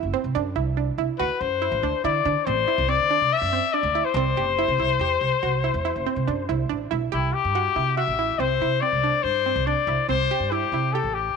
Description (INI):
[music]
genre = progressive instrumental, band music in an uneven meter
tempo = 142 BPM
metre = 7/4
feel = straight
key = C lydian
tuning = A4 = 441 Hz
[part]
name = analog pluck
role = arpeggios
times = 0.0-11.3 s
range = C4 to G4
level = -28 LUFS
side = right 15 dB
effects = chorus
[part]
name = upright bass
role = bass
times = 0.0-11.3 s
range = F#1 to D3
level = -27 LUFS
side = right 2 dB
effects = none
[part]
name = warm trumpet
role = melody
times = 1.2-11.4 s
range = E4 to E5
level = -22 LUFS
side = left 9 dB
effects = tape echo
[sound]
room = moderate plate reverb, RT60 2.6 s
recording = 1960s-style stereo with parts hard left and right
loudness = -21 LUFS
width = side -5 dB against mid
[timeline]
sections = 0.0-7.1 A section; 7.1-11.4 B section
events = none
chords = 0.0 D9/F#; 1.2 D7; 4.2 Am (rootless); 7.1 Cadd9